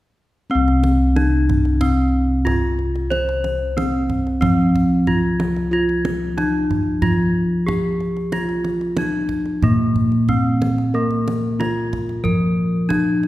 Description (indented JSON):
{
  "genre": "Javanese gamelan",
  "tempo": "92 BPM",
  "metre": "4/4",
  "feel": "straight",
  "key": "C slendro",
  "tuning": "A4 = 444 Hz",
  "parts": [
    { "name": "gamelan-type bronze metallophone", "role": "melody", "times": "0.5-13.3 s", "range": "Bb3-40c to C5", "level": "-20 LUFS", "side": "equal", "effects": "none" },
    { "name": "gamelan-type bossed gongs", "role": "bass", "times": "0.5-13.3 s", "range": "C2 to C5", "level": "-20 LUFS", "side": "equal", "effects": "none" },
    { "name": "kendang", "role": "percussion", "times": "0.7-13.3 s", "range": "none", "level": "-25 LUFS", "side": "right 2 dB", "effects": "none" }
  ],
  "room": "wet scoring stage reverb, RT60 1.7 s",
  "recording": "heard from further back in the room",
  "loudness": "-16 LUFS",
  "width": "side -15 dB against mid",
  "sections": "0.5-13.3 A section",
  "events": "none",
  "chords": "none",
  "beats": "| 0.50 1.15 1.81 2.46 | 3.11 3.76 4.42 5.07 | 5.72 6.37 7.02 7.68 | 8.33 8.98 9.63 10.29 | 10.94 11.59 12.24 12.89"
}